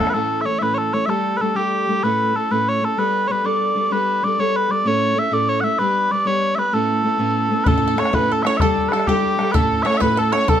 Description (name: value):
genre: celtic folk, Celtic jig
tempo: 128 BPM (dotted quarters)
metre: 6/8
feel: straight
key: A mixolydian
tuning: A4 = 440 Hz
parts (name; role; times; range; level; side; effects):
- mellow small bagpipes; melody; 0.0-10.6 s; G4 to F#5; -19 LUFS; equal; none
- fingerpicked steel-string acoustic guitar; accompaniment; 0.0-10.6 s; A2 to B4; -21 LUFS; equal; none
- bodhran; percussion; 0.1, 7.7-10.6 s; none; -22 LUFS; left 1 dB; none
- bluegrass banjo; second line; 7.7-10.6 s; G4 to C#5; -29 LUFS; right 7 dB; none
- rich fiddle; second line; 7.7-10.6 s; G4 to C#5; -30 LUFS; left 2 dB; none
room: light reverb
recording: close, detailed microphones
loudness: -16 LUFS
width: side -9 dB against mid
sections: 0.1-7.7 A section; 7.7-10.6 A section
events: none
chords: 0.1 A; 1.1 Gsus2; 2.0 A; 3.0 Gadd9; 4.9 A; 5.8 G; 6.7 Aadd9; 7.7 A; 8.6 Gsus2; 9.5 A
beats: | 0.14 0.61 | 1.08 1.55 | 2.03 2.50 | 2.97 3.44 | 3.91 4.38 | 4.85 5.32 | 5.79 6.26 | 6.73 7.20 | 7.67 8.14 | 8.61 9.07 | 9.54 10.01 | 10.47